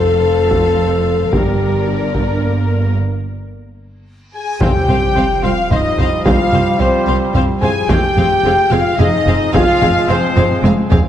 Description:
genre	cinematic, epic orchestral film score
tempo	110 BPM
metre	3/4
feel	straight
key	unclear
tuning	A4 = 440 Hz
part	warm symphonic violin section	melody	0.0-11.0 s	D5 to F5	-28 LUFS	left 6 dB	none
part	clear symphonic violin section	second line	0.0-10.6 s	Bb4 to Ab5	-25 LUFS	left 4 dB	none
part	rich symphonic viola section	accompaniment	0.0-11.0 s	C4 to C5	-24 LUFS	equal	none
part	mellow French horn section	sustained chords	0.0-10.6 s	Bb3 to A4	-18 LUFS	left 3 dB	none
part	rich symphonic cello section	bass	0.0-11.0 s	C2 to G2	-21 LUFS	right 3 dB	none
part	rich symphonic double bass section	bass	0.0-11.0 s	F1 to C2	-20 LUFS	right 2 dB	none
part	solo taiko drums	drums	0.5-11.1 s	none	-17 LUFS	equal	none
part	reverse cymbal and sub drop	sound effects	4.5-6.3 s	none	-24 LUFS	equal	none
part	silver concert flute	second line	4.3-10.6 s	C5 to Ab5	-23 LUFS	left 2 dB	none
part	clear trumpet section	stabs	4.3-10.6 s	C5 to Ab5	-21 LUFS	equal	none
part	bright trombone section	sustained chords	4.6-11.1 s	F3 to Ab3	-23 LUFS	right 3 dB	none
part	timpani	percussion	4.6-5.4 s	C3	-24 LUFS	equal	none
room	moderate concert hall reverb, RT60 2.0 s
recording	dark, warm production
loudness	-12 LUFS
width	side -10 dB against mid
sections	0.0-4.6 A section; 4.6-11.1 B section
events	break 3.0-4.6; drum fill 3.8-4.6, 10.4-11.1; reverse cymbal 4.5; impact 4.6-6.3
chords	0.0 F; 1.3 Gm; 3.0 N.C.; 4.6 Csus4; 7.9 Fm

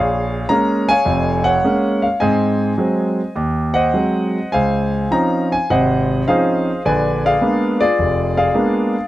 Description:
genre	solo jazz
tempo	105 BPM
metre	4/4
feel	swing 69% on 8ths, rubato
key	unclear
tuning	A4 = 440 Hz
part	clear concert grand piano	solo	0.0-9.1 s	F1 to Bb5	-15 LUFS	equal	none
room	light reverb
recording	dry, close 1970s-style studio recording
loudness	-15 LUFS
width	side -15 dB against mid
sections	0.0-9.1 A section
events	none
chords	0.0 Bbm7; 2.2 Ab7; 4.5 Dbmaj9; 6.9 Bb7b9

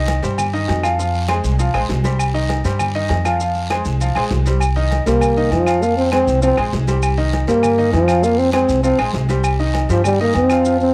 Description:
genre	latin, salsa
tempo	199 BPM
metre	4/4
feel	straight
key	C minor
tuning	A4 = 440 Hz
part	bright grand piano	accompaniment	0.0-10.9 s	Eb3 to F5	-25 LUFS	equal	cassette tape
part	upright bass	bass	0.0-10.9 s	Bb1 to G2	-22 LUFS	equal	tube saturation
part	agogo bells and timbales	percussion	0.1-10.6 s	none	-27 LUFS	equal	none
part	congas	percussion	0.1-10.9 s	none	-33 LUFS	equal	none
part	guiro	percussion	0.1-10.9 s	none	-37 LUFS	equal	none
part	maracas	percussion	0.1-10.9 s	none	-37 LUFS	equal	none
part	claves	percussion	0.4-10.7 s	none	-32 LUFS	equal	none
part	dark trombone	melody	5.1-10.9 s	F3 to C4	-17 LUFS	equal	cassette tape
room	light reverb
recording	home recording on cassette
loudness	-17 LUFS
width	mono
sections	0.0-4.6 A section; 4.6-10.9 B section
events	trombone solo 4.6-10.9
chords	0.0 Cm; 1.0 Fm; 2.2 Cm; 3.4 Fm; 4.6 Cm; 5.8 Fm; 7.0 Cm; 8.2 Fm; 9.4 Cm

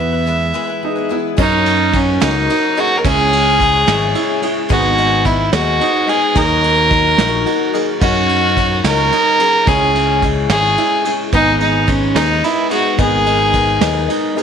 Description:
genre	indie folk with a building arrangement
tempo	72 BPM (dotted quarters)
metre	6/8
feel	straight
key	G# minor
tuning	A4 = 440 Hz
part	warm fiddle	melody	0.0-14.1 s	C#4 to E5	-15 LUFS	right 1 dB	none
part	fingerpicked steel-string acoustic guitar	accompaniment	0.0-1.4 s	E3 to G#4	-24 LUFS	left 13 dB	none
part	picked twelve-string acoustic guitar	accompaniment	0.0-14.4 s	G#2 to B4	-23 LUFS	left 12 dB	none
part	clear upright piano	arpeggios	0.0-14.4 s	B3 to G#4	-22 LUFS	right 10 dB	none
part	fingered electric bass	bass	0.0-14.1 s	G#1 to F#2	-19 LUFS	equal	none
part	soft brush drum kit	drums	0.3-14.4 s	crash cymbal, hi-hat, kick drum, ride cymbal, snare drum	-20 LUFS	right 2 dB	none
part	felt-muted upright piano	accompaniment	1.4-14.4 s	F#1 to F#5	-26 LUFS	left 12 dB	none
part	mellow brass ensemble	sustained chords	1.4-14.4 s	C#3 to A#4	-27 LUFS	left 12 dB	stereo widening
room	moderate echo chamber reverb, RT60 1.8 s, studio ambience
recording	1960s-style stereo with parts hard left and right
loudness	-12 LUFS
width	side -7 dB against mid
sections	0.0-1.4 A section; 1.4-14.4 B section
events	none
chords	0.0 E; 1.4 F#6; 3.0 C#m; 4.7 G#m; 6.4 D#m; 8.0 F#6; 9.7 C#m; 11.3 G#m; 13.0 G#madd9

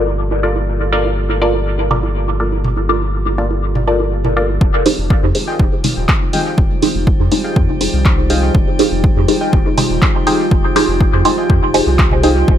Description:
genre	dub techno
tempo	122 BPM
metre	4/4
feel	straight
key	unclear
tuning	A4 = 443 Hz
part	dark analog pad	sustained chords	0.0-12.6 s	Bb3 to C5	-23 LUFS	equal	chorus, sidechain pumping
part	filtered dub chord stab	stabs	0.0-12.3 s	Eb4 to D5	-17 LUFS	equal	phaser, sidechain pumping, dub echo
part	round analog bass	bass	0.0-12.6 s	Eb1 to F2	-18 LUFS	equal	sidechain pumping
part	electronic bongos and toms	percussion	0.1-12.3 s	none	-25 LUFS	right 3 dB	sidechain pumping on perc, sidechain pumping on toms, dub echo
part	electronic kick drum	drums	4.6-12.6 s	none	-14 LUFS	equal	overdrive
part	drifting glass-harmonics texture	texture	5.8-12.6 s	G3 to G5	-26 LUFS	equal	chorus, built-in reverb, sidechain pumping
part	punchy analog drum machine	drums	4.9-12.3 s	handclaps, hi-hat	-21 LUFS	right 1 dB	dub echo
part	warbly lo-fi synth keys	riff	5.5-12.5 s	F4 to G5	-25 LUFS	left 1 dB	chorus, sidechain pumping, dub echo
room	light reverb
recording	low-pass filter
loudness	-12 LUFS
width	side -10 dB against mid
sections	0.0-4.6 A section; 4.6-12.6 B section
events	filter sweep 0.0-4.6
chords	0.0 Gm9; 4.6 Fm9

